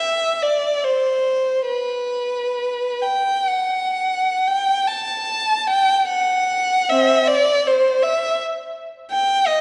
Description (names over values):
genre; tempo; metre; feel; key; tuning
classical, free, expressive piece for unaccompanied violin; 36-57 BPM (dotted quarters); 6/8; rubato; G major; A4 = 439 Hz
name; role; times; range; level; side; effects
warm violin; solo; 0.0-9.6 s; C4 to A5; -20 LUFS; equal; none
room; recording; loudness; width
wet scoring stage reverb, RT60 2.2 s; heard from further back in the room, nothing above 10.7 kHz; -20 LUFS; mono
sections
0.0-9.6 A section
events
none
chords
none